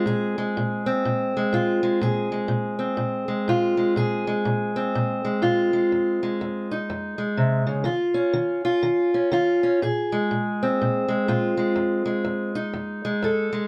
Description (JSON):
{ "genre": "blues", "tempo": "123 BPM", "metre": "4/4", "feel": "swing 61% on 8ths", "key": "Bb minor", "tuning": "A4 = 440 Hz", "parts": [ { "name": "fingerpicked steel-string acoustic guitar", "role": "solo", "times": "0.0-13.7 s", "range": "F2 to A4", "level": "-24 LUFS", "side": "equal", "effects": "none" } ], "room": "moderate small room reverb, RT60 0.5 s", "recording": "none", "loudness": "-24 LUFS", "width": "mono", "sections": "0.0-13.7 A section", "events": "none", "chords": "0.0 Bbsus2; 5.9 Fm7; 7.9 Ebsus2; 9.8 Bbsus2; 11.8 F7#9" }